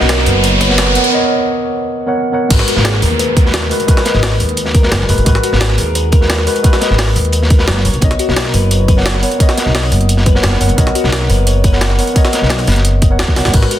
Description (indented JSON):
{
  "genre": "liquid drum and bass",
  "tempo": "174 BPM",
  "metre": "4/4",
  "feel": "straight",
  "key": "unclear",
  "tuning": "A4 = 444 Hz",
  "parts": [
    { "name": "mellow tine electric piano", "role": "accompaniment", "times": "0.0-13.8 s", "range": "G#3 to F#5", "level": "-17 LUFS", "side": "equal", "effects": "ping-pong delay" },
    { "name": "rich chamber string section", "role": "sustained chords", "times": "0.0-1.1 s", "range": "C#4 to A#4", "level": "-29 LUFS", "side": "equal", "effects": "none" },
    { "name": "harp-like synth pluck", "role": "arpeggios", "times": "0.0-13.8 s", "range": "F#4 to D#5", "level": "-21 LUFS", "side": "left 3 dB", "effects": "chorus, ping-pong delay" },
    { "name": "upright bass", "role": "bass", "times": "0.0-13.6 s", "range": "F#1 to D#2", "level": "-14 LUFS", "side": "equal", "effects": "none" },
    { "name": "crunchy breakbeat drum kit", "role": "drums", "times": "0.0-13.8 s", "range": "hi-hat, snare drum", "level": "-21 LUFS", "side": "equal", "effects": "high-pass filter on hats, high-pass filter on snare, high-pass filter on room" },
    { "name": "riser and downlifter", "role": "sound effects", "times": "0.0-5.3 s", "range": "none", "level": "-19 LUFS", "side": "right 1 dB", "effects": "none" },
    { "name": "jungle sampler-style drum kit", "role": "drums", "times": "0.1-13.8 s", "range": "crash cymbal, hi-hat, snare drum", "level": "-19 LUFS", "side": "equal", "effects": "overdrive, high-pass filter on snare, high-pass filter on hats, high-pass filter on cymbals" },
    { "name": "electronic kick drum", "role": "drums", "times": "0.6-13.6 s", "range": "none", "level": "-11 LUFS", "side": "equal", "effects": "high-pass filter on kick, high-pass filter on room" }
  ],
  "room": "moderate recital hall reverb, RT60 1.4 s, small room ambience",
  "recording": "dense, heavily limited modern master",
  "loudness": "-10 LUFS",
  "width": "side -12 dB against mid",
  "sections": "0.0-2.5 A section; 2.5-13.8 B section",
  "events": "build-up 0.0-2.5; riser 0.0-1.1; filter sweep on tine electric piano 0.0-2.5; break 1.1-2.5; drop 2.5-13.8; drum fill 13.4",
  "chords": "0.0 Bmaj9; 2.5 G#m9; 7.9 Bmaj9"
}